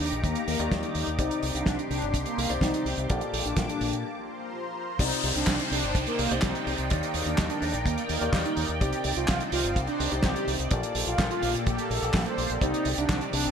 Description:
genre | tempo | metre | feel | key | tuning
italo disco | 126 BPM | 4/4 | straight | C dorian | A4 = 441 Hz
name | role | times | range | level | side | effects
mellow synth brass | melody | 0.0-13.5 s | Bb3 to C5 | -31 LUFS | equal | chorus, digital delay
lush unison pad | sustained chords | 0.0-13.5 s | Bb3 to D6 | -33 LUFS | equal | chorus, phaser
dark baby grand piano | stabs | 0.0-13.5 s | Bb2 to D5 | -34 LUFS | left 3 dB | none
fingered electric bass with an envelope filter | bass | 0.0-13.5 s | G1 to Bb2 | -32 LUFS | equal | tube saturation
damped 70s drum kit | drums | 0.1-13.5 s | crash cymbal, handclaps, hi-hat, snare drum | -31 LUFS | right 2 dB | small room ambience, gated reverb
kick drum | drums | 0.2-13.2 s | none | -28 LUFS | equal | small room ambience
downlifter | sound effects | 5.0-8.8 s | none | -34 LUFS | left 1 dB | none
room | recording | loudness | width
moderate plate reverb, RT60 2.0 s | bright 1980s-style digital production | -25 LUFS | side -7 dB against mid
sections
0.0-5.0 A section; 5.0-13.5 B section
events
break 4.0-5.0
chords
0.0 Ebmaj7; 1.2 Cmadd9; 3.1 Gmadd9/Bb; 4.0 Bbsus2; 5.0 Cmadd9; 6.9 Ebmaj7; 8.8 Cmadd9; 10.7 Gmadd9/Bb; 12.6 Cmadd9

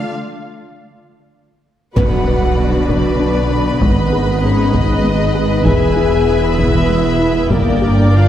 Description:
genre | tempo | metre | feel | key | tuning
cinematic, hybrid orchestral and electronic film score | 65 BPM (dotted quarters) | 6/8 | straight | B dorian | A4 = 440 Hz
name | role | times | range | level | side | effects
dark symphonic violin section | melody | 0.0-8.3 s | Bb4 to G#5 | -27 LUFS | left 2 dB | none
warm symphonic viola section | accompaniment | 0.0-8.3 s | F4 to D5 | -24 LUFS | equal | none
hollow soft pad | sustained chords | 0.0-8.3 s | G3 to D5 | -23 LUFS | equal | ensemble chorus
warm symphonic cello section | bass | 0.0-8.3 s | E2 to D3 | -20 LUFS | right 1 dB | none
warm symphonic violin section | second line | 2.0-8.3 s | D5 to B5 | -24 LUFS | left 2 dB | none
dark French horn section | sustained chords | 2.0-8.3 s | Bb3 to G#4 | -19 LUFS | left 3 dB | none
mellow trombone section | sustained chords | 2.0-8.3 s | D3 to B3 | -25 LUFS | right 3 dB | none
soft round pluck | arpeggios | 2.0-8.0 s | E3 to B4 | -25 LUFS | left 3 dB | none
detuned saw bass | bass | 2.0-8.3 s | E1 to B1 | -22 LUFS | equal | none
rich symphonic double bass section | bass | 2.0-8.3 s | E1 to B1 | -20 LUFS | right 1 dB | none
taiko ensemble | drums | 2.0-8.1 s | none | -20 LUFS | equal | none
impact | sound effects | 2.0-3.8 s | none | -23 LUFS | equal | none
room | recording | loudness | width
wet scoring stage reverb, RT60 2.0 s | heard from further back in the room | -12 LUFS | side -11 dB against mid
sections
0.0-2.0 A section; 2.0-8.3 B section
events
break 0.1-2.0; impact 2.0-3.8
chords
0.0 Dm; 2.0 Bm; 3.8 G#m; 5.7 E; 7.5 Gm

